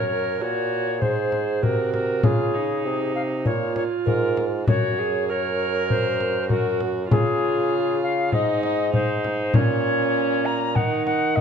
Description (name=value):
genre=classical, renaissance-style consort dance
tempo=98 BPM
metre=4/4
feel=straight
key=unclear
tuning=A4 = 441 Hz
part: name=mellow alto recorder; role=melody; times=0.0-11.4 s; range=Ab4 to Bb5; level=-24 LUFS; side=left 3 dB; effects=none
part: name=warm viola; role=second line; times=0.0-11.4 s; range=Db4 to Bb4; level=-26 LUFS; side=right 5 dB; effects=none
part: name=warm bassoon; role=bass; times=0.0-11.4 s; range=Gb2 to Eb3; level=-27 LUFS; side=right 1 dB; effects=none
part: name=frame drum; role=percussion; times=1.0-11.4 s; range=none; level=-24 LUFS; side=left 2 dB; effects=none
room=moderate recital hall reverb, RT60 1.7 s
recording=dark, warm production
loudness=-20 LUFS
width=side -7 dB against mid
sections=0.0-11.4 A section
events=none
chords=0.0 Gb; 1.0 Ab; 2.2 Db; 3.5 Bb5; 4.7 Gb; 7.1 Db; 8.3 Ab; 9.5 Bbm; 10.8 Ebm